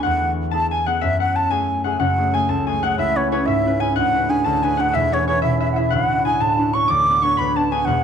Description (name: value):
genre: celtic folk, Celtic jig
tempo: 123 BPM (dotted quarters)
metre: 6/8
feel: straight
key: F# minor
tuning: A4 = 440 Hz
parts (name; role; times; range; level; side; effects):
- bright baroque flute; melody; 0.0-8.0 s; C#5 to D6; -20 LUFS; right 2 dB; none
- concert harp; second line; 0.0-8.0 s; C#5 to D6; -26 LUFS; left 11 dB; none
- concert harp; accompaniment; 0.0-8.0 s; D1 to B4; -21 LUFS; left 2 dB; none
- hammered dulcimer; second line; 1.9-8.0 s; C#4 to D5; -27 LUFS; right 12 dB; none
room: light reverb, small room ambience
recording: 1960s-style stereo with parts hard left and right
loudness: -17 LUFS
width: side -7 dB against mid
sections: 0.0-2.0 A section; 2.0-8.0 A section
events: none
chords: 0.0 E; 1.0 F#madd9; 3.0 C#m7; 4.0 Bm/D; 4.9 E; 5.9 Dadd9; 6.9 Bm/D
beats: | 0.04 0.53 | 1.02 1.51 | 2.00 2.49 | 2.98 3.46 | 3.96 4.44 | 4.93 5.42 | 5.91 6.40 | 6.89 7.38 | 7.87